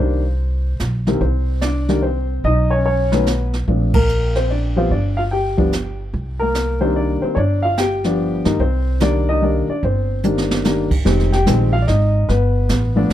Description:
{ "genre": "jazz piano trio", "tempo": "146 BPM", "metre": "3/4", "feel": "swing 64% on 8ths", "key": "C minor", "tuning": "A4 = 436 Hz", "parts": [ { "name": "dark baby grand piano", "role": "melody", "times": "0.0-13.1 s", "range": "C2 to G5", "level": "-18 LUFS", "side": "left 2 dB", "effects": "plate reverb" }, { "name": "upright bass", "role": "bass", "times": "0.0-13.1 s", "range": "F1 to G2", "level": "-19 LUFS", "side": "equal", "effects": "none" }, { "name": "jazz brush drum kit", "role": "drums", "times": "0.8-13.1 s", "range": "brushed snare drum, crash cymbal, hi-hat, kick drum, ride cymbal, snare drum", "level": "-22 LUFS", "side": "right 2 dB", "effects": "none" } ], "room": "light reverb", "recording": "dark, warm production", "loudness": "-15 LUFS", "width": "side -12 dB against mid", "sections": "0.0-1.2 A section; 1.2-11.1 A section; 11.1-13.1 B section", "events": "band accent 3.9; drum fill 10.2-10.7", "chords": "0.0 Cm7; 1.2 N.C.; 2.4 Badd9; 3.7 Bb; 4.9 G5; 6.1 Cm7; 7.4 G7; 8.6 Cm7; 11.1 Fm9; 12.3 G" }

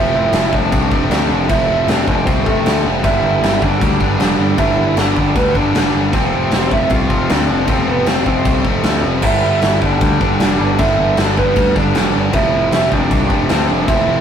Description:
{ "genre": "punk rock", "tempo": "155 BPM", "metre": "4/4", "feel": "straight", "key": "unclear", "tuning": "A4 = 440 Hz", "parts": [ { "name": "lead guitar through a small cranked amp", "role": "melody", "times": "0.0-14.2 s", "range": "A3 to F5", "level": "-18 LUFS", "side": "right 2 dB", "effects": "overdrive" }, { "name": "overdriven electric guitar", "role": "riff", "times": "0.0-14.2 s", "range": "F2 to G3", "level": "-20 LUFS", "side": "right 2 dB", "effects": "none" }, { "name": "tight distorted guitar", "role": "riff", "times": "0.0-14.2 s", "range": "F2 to D4", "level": "-23 LUFS", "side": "left 5 dB", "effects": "distortion" }, { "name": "growling picked electric bass", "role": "bass", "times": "0.0-14.2 s", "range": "F1 to D2", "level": "-19 LUFS", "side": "left 1 dB", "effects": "overdrive" }, { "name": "big rock drum kit", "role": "drums", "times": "0.3-14.0 s", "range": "crash cymbal, kick drum, snare drum", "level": "-18 LUFS", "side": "left 1 dB", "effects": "none" } ], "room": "moderate booth ambience, RT60 0.2 s", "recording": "rough rehearsal-room recording, warm saturation", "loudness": "-12 LUFS", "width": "side -8 dB against mid", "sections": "0.0-9.2 A section; 9.2-14.2 A section", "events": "none", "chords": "0.0 F; 3.0 G; 6.1 F; 9.2 G; 12.3 F" }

